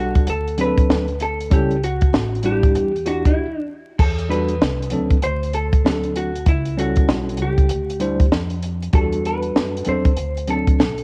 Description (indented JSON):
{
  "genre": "hip hop, jazz-hop",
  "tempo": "97 BPM",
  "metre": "4/4",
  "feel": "swing 62% on 16ths",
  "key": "E minor",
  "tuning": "A4 = 439 Hz",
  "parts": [
    { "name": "vintage hollow-body jazz guitar", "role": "melody", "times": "0.0-11.0 s", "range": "E4 to C5", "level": "-27 LUFS", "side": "equal", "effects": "none" },
    { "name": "tine electric piano", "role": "accompaniment", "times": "0.0-10.9 s", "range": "F#3 to F#5", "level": "-25 LUFS", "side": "equal", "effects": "cassette tape" },
    { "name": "upright bass", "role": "bass", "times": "0.0-11.0 s", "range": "A1 to F#2", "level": "-28 LUFS", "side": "equal", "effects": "none" },
    { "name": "compact cocktail drum kit", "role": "drums", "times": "0.2-11.0 s", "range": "crash cymbal, hi-hat, kick drum, snare drum", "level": "-20 LUFS", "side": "equal", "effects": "cassette tape" }
  ],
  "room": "small room ambience",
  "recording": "home recording on cassette, vinyl crackle",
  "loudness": "-19 LUFS",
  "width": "mono",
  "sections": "0.0-4.0 A section; 4.0-11.0 B section",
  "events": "break 3.4-4.0",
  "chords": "0.3 D7; 1.5 A7/C#; 2.8 Em9; 4.0 Em11; 5.2 D7; 6.5 A7/C#; 7.7 D9sus4; 8.9 Em11; 10.2 D7",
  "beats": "0.28 0.90 | 1.51 2.13 2.75 3.37 | 3.99 4.61 5.22 5.84 | 6.46 7.08 7.70 8.32 | 8.94 9.55 10.17 10.79"
}